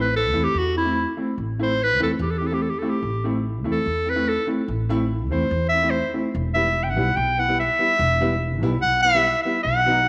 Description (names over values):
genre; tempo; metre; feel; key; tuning
klezmer; 145 BPM; 4/4; straight; A minor; A4 = 440 Hz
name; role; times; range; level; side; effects
clear clarinet; melody; 0.0-10.1 s; E4 to G5; -23 LUFS; equal; none
warm upright piano; accompaniment; 0.0-10.0 s; F#3 to E4; -28 LUFS; equal; none
upright bass; bass; 0.0-10.1 s; E1 to E2; -28 LUFS; equal; none
room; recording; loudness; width
wet echo chamber reverb, RT60 1.8 s, small room ambience; none; -22 LUFS; mono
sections
0.0-10.1 A section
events
clarinet solo 0.0-10.1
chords
0.0 Am; 6.3 Em